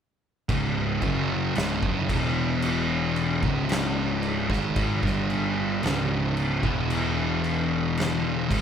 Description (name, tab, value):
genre	stoner and doom metal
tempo	56 BPM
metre	4/4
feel	straight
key	C# phrygian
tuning	A4 = 439 Hz
part	thick fuzz guitar	riff	0.5-8.6 s	C#2 to G#3	-29 LUFS	left 8 dB	distortion
part	thick fuzz guitar	riff	0.5-8.6 s	C#2 to G#3	-27 LUFS	right 6 dB	distortion
part	fuzz picked electric bass	bass	0.5-8.6 s	C#1 to G#1	-32 LUFS	equal	overdrive
part	oversized low-tuned drum kit	drums	0.5-8.6 s	crash cymbal, kick drum, snare drum	-28 LUFS	equal	none
room	light reverb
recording	band playing live in one room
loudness	-23 LUFS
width	side -8 dB against mid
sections	0.5-8.6 A section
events	none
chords	0.5 C#5; 2.1 E5; 3.4 C#5; 6.6 E5